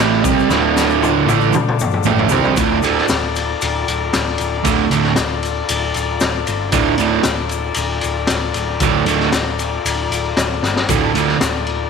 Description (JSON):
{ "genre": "garage rock duo or trio", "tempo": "115 BPM", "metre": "4/4", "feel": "straight", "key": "D minor", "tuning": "A4 = 442 Hz", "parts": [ { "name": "combo organ", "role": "sustained chords", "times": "0.0-11.9 s", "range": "F4 to D5", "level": "-23 LUFS", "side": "left 11 dB", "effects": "none" }, { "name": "fuzz guitar", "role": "riff", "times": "0.0-11.4 s", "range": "D2 to C4", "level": "-16 LUFS", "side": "right 10 dB", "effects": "distortion" }, { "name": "hollow-body short-scale picked electric bass", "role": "bass", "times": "0.0-11.9 s", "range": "D1 to C2", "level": "-24 LUFS", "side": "left 3 dB", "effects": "none" }, { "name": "raw garage drum kit", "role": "drums", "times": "0.2-11.8 s", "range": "kick drum, ride cymbal, snare drum, toms", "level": "-19 LUFS", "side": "left 3 dB", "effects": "none" }, { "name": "tube shaker", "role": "percussion", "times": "0.2-11.5 s", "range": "none", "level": "-32 LUFS", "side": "left 16 dB", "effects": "none" } ], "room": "moderate echo chamber reverb, RT60 2.1 s", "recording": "1960s-style stereo with parts hard left and right", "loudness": "-14 LUFS", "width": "side -5 dB against mid", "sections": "0.0-2.6 A section; 2.6-11.9 B section", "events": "drum fill 0.5-2.6, 10.6", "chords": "0.0 Dm" }